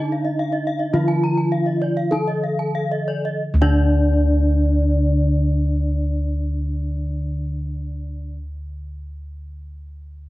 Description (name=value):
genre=Balinese gamelan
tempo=44-57 BPM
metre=4/4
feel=straight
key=unclear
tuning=A4 = 439 Hz
part: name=gamelan-type bronze metallophone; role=melody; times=0.0-8.4 s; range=D4 to A4-30c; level=-24 LUFS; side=left 1 dB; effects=plate reverb
part: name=gamelan-type bronze metallophone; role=accompaniment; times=0.0-8.4 s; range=D3 to F3-30c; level=-28 LUFS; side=equal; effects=none
part: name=gamelan-type bronze metallophone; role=arpeggios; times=0.0-8.3 s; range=D5 to A5-30c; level=-30 LUFS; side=right 2 dB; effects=plate reverb, analog delay
part: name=gamelan-type bossed gongs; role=bass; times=0.0-8.3 s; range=D2 to Eb4+20c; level=-21 LUFS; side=equal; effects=none
part: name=gamelan-type bronze metallophone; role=arpeggios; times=0.1-8.4 s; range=D5 to Bb5-20c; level=-30 LUFS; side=left 4 dB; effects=plate reverb
room=moderate studio reverb, RT60 0.5 s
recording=dark, warm production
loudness=-18 LUFS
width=side -17 dB against mid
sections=0.0-3.4 A section; 3.4-8.9 B section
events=slowing down 0.0-3.4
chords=none